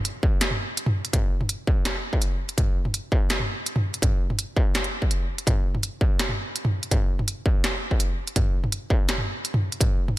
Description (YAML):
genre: drum and bass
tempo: 166 BPM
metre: 4/4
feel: half-time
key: none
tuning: none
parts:
  - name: industrial drum kit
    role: drums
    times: 0.1-10.2 s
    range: hi-hat, snare drum, toms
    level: -25 LUFS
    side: equal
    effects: small room ambience
  - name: electronic kick drum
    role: drums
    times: 0.2-9.9 s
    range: none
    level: -23 LUFS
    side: equal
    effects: distortion, small room ambience
room: little or no reverb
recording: dense, heavily limited modern master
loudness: -22 LUFS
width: side -16 dB against mid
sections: 0.0-10.2 A section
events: none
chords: none